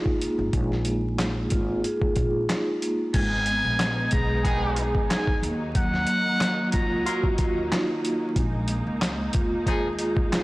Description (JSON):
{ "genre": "hip hop, boom-bap hip-hop", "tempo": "92 BPM", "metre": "4/4", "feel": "swing 55% on 16ths", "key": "unclear", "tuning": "A4 = 440 Hz", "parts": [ { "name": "vibraphone with soft mallets", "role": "accompaniment", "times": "0.0-10.4 s", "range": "Gb3 to Ab5", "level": "-26 LUFS", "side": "right 1 dB", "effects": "cassette tape, high-pass filter, low-pass filter" }, { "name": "boom bap sampler-style drum kit", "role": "drums", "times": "0.1-10.4 s", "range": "crash cymbal, handclaps, hi-hat, kick drum, snare drum", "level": "-26 LUFS", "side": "equal", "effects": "none" }, { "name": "upright bass", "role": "bass", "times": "0.4-10.1 s", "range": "Ab1 to Eb2", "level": "-30 LUFS", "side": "equal", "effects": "none" }, { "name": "trumpet with metal mute", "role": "melody", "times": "3.1-7.2 s", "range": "Gb5 to Bb5", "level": "-28 LUFS", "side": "equal", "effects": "high-pass filter, low-pass filter, tape echo" }, { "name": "bright studio string section", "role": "sustained chords", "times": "3.2-10.4 s", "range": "Eb3 to Eb4", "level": "-35 LUFS", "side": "equal", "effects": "high-pass filter, low-pass filter" }, { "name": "bright horn section", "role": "stabs", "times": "4.4-9.9 s", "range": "Eb3 to Bb4", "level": "-33 LUFS", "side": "left 1 dB", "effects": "high-pass filter, low-pass filter, tape echo" } ], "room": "light reverb, studio reverb", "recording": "blown-out, overdriven recording, vinyl crackle, overdrive", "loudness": "-22 LUFS", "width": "side -20 dB against mid", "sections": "0.0-3.1 A section; 3.1-10.4 B section", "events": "none", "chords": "0.0 Bb7sus4; 3.1 Abm; 5.4 Ebmadd9; 8.4 Bb7sus4" }